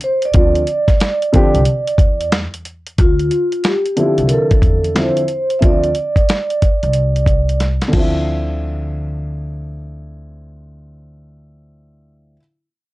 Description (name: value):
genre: hip hop, jazz-hop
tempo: 91 BPM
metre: 4/4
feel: swing 64% on 16ths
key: D minor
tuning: A4 = 442 Hz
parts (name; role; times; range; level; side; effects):
- vibraphone with soft mallets; melody; 0.0-7.6 s; F4 to E5; -17 LUFS; right 1 dB; none
- dusty soul sampler-style drum kit; drums; 0.0-8.1 s; crash cymbal, hi-hat, kick drum, snare drum; -15 LUFS; equal; none
- dark baby grand piano; accompaniment; 0.3-12.4 s; D3 to G4; -19 LUFS; equal; none
- upright bass; bass; 0.3-12.4 s; C2 to E2; -20 LUFS; equal; none
room: light reverb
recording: dry, gritty hardware recording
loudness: -13 LUFS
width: side -18 dB against mid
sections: 0.0-3.0 A section; 3.0-8.3 B section; 8.3-10.9 C section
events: drum fill 7.6-8.3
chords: 0.0 Dm9